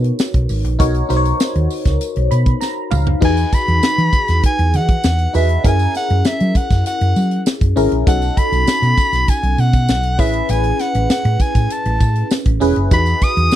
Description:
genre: polished 1980s jazz-funk pop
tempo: 99 BPM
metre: 4/4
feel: straight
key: unclear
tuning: A4 = 440 Hz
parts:
  - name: FM electric piano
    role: accompaniment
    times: 0.0-13.6 s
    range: C#4 to B5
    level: -21 LUFS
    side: left 1 dB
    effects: phaser, wide subtle chorus
  - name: hollow-body short-scale fingered electric bass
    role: bass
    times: 0.0-13.6 s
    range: E1 to F#3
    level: -16 LUFS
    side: equal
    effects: none
  - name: tight funk drum kit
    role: drums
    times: 0.0-13.6 s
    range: crash cymbal, hi-hat, kick drum, snare drum, toms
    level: -17 LUFS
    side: equal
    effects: none
  - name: tambourine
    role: percussion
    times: 0.2-13.6 s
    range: none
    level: -35 LUFS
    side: right 26 dB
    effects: none
  - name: breathy soprano saxophone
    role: melody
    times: 3.2-13.6 s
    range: E5 to D#6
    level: -19 LUFS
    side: left 1 dB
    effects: slapback echo
room: little or no reverb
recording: dry, close 1970s-style studio recording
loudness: -13 LUFS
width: side -12 dB against mid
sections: 0.0-3.2 A section; 3.2-13.6 B section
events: FM electric piano fill 2.0-3.2; drum fill 2.6-3.2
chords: 0.0 Bmaj7; 3.2 Emaj9; 5.6 F#7; 8.1 B7; 10.2 Amaj7; 12.9 Emaj9

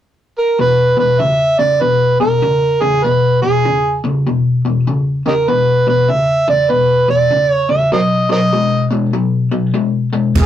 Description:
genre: electric blues shuffle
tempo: 98 BPM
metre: 4/4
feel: swing 63% on 8ths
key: E mixolydian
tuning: A4 = 440 Hz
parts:
  - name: overdriven harmonica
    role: melody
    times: 0.4-10.5 s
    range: D#4 to E5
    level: -13 LUFS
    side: right 2 dB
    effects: none
  - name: crunchy overdriven guitar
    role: riff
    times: 0.6-10.3 s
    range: E2 to G#3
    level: -15 LUFS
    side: left 3 dB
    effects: phaser
  - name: vintage muted fingered electric bass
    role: bass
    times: 10.4-10.5 s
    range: E1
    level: -11 LUFS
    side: right 1 dB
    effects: none
  - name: swinging big-band drum kit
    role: drums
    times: 10.4-10.5 s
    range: crash cymbal, kick drum, snare drum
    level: -15 LUFS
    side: right 1 dB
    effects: none
room: wet small room reverb, RT60 0.5 s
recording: rough rehearsal-room recording, warm saturation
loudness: -12 LUFS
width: side -10 dB against mid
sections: 0.6-10.4 A section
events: none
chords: 0.0 N.C.; 0.6 E5; 7.9 B

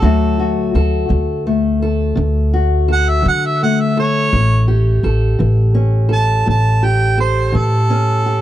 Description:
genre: acoustic country blues, solo or duo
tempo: 56 BPM (dotted quarters)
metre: 12/8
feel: straight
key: A mixolydian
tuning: A4 = 438 Hz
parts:
  - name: mellow harmonica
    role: melody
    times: 0.0-8.4 s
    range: A4 to A5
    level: -18 LUFS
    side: right 3 dB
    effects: tape echo
  - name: fingerpicked steel-string acoustic guitar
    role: accompaniment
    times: 0.0-8.4 s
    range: A2 to A4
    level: -18 LUFS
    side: left 2 dB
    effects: none
  - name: upright bass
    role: bass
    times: 0.0-8.4 s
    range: A1 to D3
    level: -15 LUFS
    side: equal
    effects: none
room: little or no reverb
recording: dry, close 1970s-style studio recording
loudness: -13 LUFS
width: side -12 dB against mid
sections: 0.0-8.4 A section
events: none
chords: 0.0 D; 4.3 A7

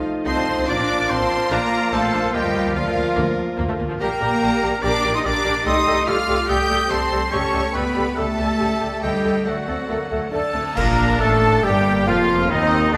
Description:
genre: classical, dramatic, fast romantic movement for symphony orchestra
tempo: 143 BPM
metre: 4/4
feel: rubato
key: Bb major, G minor from 4.0 s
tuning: A4 = 440 Hz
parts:
  - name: rich studio violin section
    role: melody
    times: 0.0-13.0 s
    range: D5 to G6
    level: -30 LUFS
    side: equal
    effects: none
  - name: bright clarinet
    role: second line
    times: 0.0-13.0 s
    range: D4 to Eb5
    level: -32 LUFS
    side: equal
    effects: none
  - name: clear oboe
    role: second line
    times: 0.0-13.0 s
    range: D4 to G5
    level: -30 LUFS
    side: equal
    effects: none
  - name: clear symphonic violin section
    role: second line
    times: 0.0-13.0 s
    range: F4 to Bb5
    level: -32 LUFS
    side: equal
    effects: none
  - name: mellow concert flute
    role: second line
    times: 0.0-13.0 s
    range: D4 to Eb6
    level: -30 LUFS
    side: equal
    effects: none
  - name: mellow bassoon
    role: accompaniment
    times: 0.0-13.0 s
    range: D3 to Bb3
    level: -30 LUFS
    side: equal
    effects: none
  - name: rich symphonic viola section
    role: accompaniment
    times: 0.0-13.0 s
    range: F3 to A4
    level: -31 LUFS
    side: equal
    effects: none
  - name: mellow French horn section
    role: sustained chords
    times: 0.0-13.0 s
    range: D3 to A4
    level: -29 LUFS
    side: equal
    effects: none
  - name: clear symphonic cello section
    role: bass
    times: 0.0-13.0 s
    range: D2 to G4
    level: -28 LUFS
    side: equal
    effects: none
  - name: rich symphonic double bass section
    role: bass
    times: 0.3-13.0 s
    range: F1 to Eb2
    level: -29 LUFS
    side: equal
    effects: none
  - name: cymbal swell, clash cymbals and concert bass drum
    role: percussion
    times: 7.3-11.6 s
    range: none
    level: -32 LUFS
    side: equal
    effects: none
  - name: timpani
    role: percussion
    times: 9.0-9.6 s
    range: D3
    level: -38 LUFS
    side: equal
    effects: none
  - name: mellow trumpet section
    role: stabs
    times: 10.3-13.0 s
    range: Eb4 to Bb4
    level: -25 LUFS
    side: equal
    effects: none
room: wet scoring stage reverb, RT60 1.6 s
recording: none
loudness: -20 LUFS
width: mono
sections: 0.0-10.8 A section; 10.8-13.0 B section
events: band accent 10.8-11.2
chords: 0.0 F7; 0.7 Bb; 2.3 Bb/D; 4.0 Gm/Bb; 5.7 Am7b5/C; 7.3 A7/C#; 9.0 D; 10.8 Gm

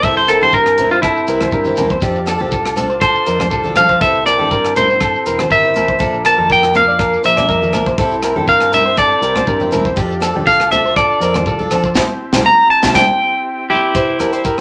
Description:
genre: highlife guitar band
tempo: 121 BPM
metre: 4/4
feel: straight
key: C mixolydian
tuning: A4 = 439 Hz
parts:
  - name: clean electric guitar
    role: melody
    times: 0.0-14.6 s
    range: E4 to Bb5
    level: -15 LUFS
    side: equal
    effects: none
  - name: picked swing-style acoustic guitar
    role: accompaniment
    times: 0.0-14.6 s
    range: E3 to Bb4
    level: -26 LUFS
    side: equal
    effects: none
  - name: combo organ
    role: sustained chords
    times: 0.0-13.9 s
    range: Bb3 to A4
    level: -30 LUFS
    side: equal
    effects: none
  - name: electric guitar through a small old amp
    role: arpeggios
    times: 0.0-14.6 s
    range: E4 to D5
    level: -21 LUFS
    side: equal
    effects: none
  - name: fingered electric bass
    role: bass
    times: 0.0-14.2 s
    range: E1 to F3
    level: -27 LUFS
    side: equal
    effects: none
  - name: tight funk drum kit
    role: drums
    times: 0.0-14.6 s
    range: hi-hat, kick drum, rim click, snare drum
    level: -24 LUFS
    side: equal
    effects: none
  - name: shekere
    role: percussion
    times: 0.0-14.6 s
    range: none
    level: -31 LUFS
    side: equal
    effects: none
  - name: agogo bells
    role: percussion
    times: 0.3-14.6 s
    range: none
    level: -31 LUFS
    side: equal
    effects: none
  - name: congas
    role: percussion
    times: 0.4-14.6 s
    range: none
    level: -27 LUFS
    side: equal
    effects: none
  - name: nylon-string guitar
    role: second line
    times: 13.7-14.6 s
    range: E4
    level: -26 LUFS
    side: equal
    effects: none
room: wet studio reverb, RT60 0.6 s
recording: none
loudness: -14 LUFS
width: mono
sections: 0.0-14.0 A section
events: clean electric guitar solo 0.0-14.0; band accent 12.0-14.0; drum fill 13.5-14.0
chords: 0.0 C; 2.0 F6; 4.0 C; 6.0 Bb; 8.0 C; 10.0 F6; 12.0 C; 14.0 Cadd9

